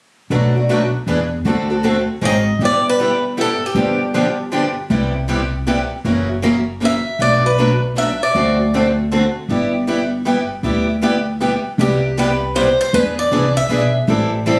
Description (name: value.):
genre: acoustic string swing (jazz manouche).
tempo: 157 BPM.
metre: 3/4.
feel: swing 64% on 8ths.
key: G major.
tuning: A4 = 442 Hz.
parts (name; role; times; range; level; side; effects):
picked steel-string acoustic guitar; accompaniment; 0.3-14.6 s; B2 to A4; -22 LUFS; equal; none.
picked steel-string acoustic guitar; accompaniment; 0.3-14.6 s; B2 to B4; -27 LUFS; equal; none.
upright bass; bass; 0.3-14.6 s; F#1 to E2; -22 LUFS; equal; none.
picked swing-style acoustic guitar; melody; 2.3-4.4, 6.9-8.9, 11.8-13.9 s; G4 to E5; -20 LUFS; equal; none.
room: moderate small room reverb, RT60 0.5 s.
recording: recorded on a phone in the room, studio reverb.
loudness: -17 LUFS.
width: mono.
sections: 0.3-2.6 A section; 2.6-11.8 B section; 11.8-14.6 C section.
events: none.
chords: 0.3 Bm7; 1.1 E7; 1.5 D7; 2.2 Ab7; 2.6 G6; 3.8 G7; 4.9 Cmaj7; 6.0 F#7; 7.2 Bm7; 8.3 D7; 9.5 G6; 11.8 Cmaj7; 12.9 E7; 14.1 Am7.